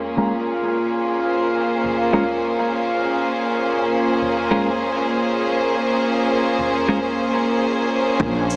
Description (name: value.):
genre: ambient dub.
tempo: 101 BPM.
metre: 4/4.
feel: swing 59% on 16ths.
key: Bb minor.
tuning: A4 = 440 Hz.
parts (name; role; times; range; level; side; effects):
clear studio string section; sustained chords; 0.0-8.6 s; Bb2 to C5; -22 LUFS; equal; low-pass filter.
drifting glass-harmonics texture; texture; 0.0-7.0 s; F4 to F5; -27 LUFS; equal; chorus, built-in reverb.
clean electric guitar; stabs; 0.2-7.0 s; Ab3 to Bb4; -27 LUFS; equal; low-pass filter, dub echo.
toms and cabasa; drums; 1.8-8.6 s; none; -43 LUFS; equal; low-pass filter on snare, low-pass filter on toms, low-pass filter on perc, low-pass filter on room, dub echo.
upright bass; bass; 8.2-8.6 s; Bb1; -23 LUFS; equal; none.
electronic kick drum; drums; 8.2-8.3 s; none; -30 LUFS; equal; overdrive.
room: moderate plate reverb, RT60 2.1 s.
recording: echo-heavy mix, small speaker sound.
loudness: -20 LUFS.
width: mono.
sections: 0.0-8.2 A section.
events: filter sweep on drum 0.0-8.2; filter sweep on clean electric guitar 0.0-8.2.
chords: 0.0 Bbm7.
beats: 0.48 | 1.07 1.67 2.26 2.85 | 3.45 4.04 4.63 5.23 | 5.82 6.42 7.01 7.61 | 8.20.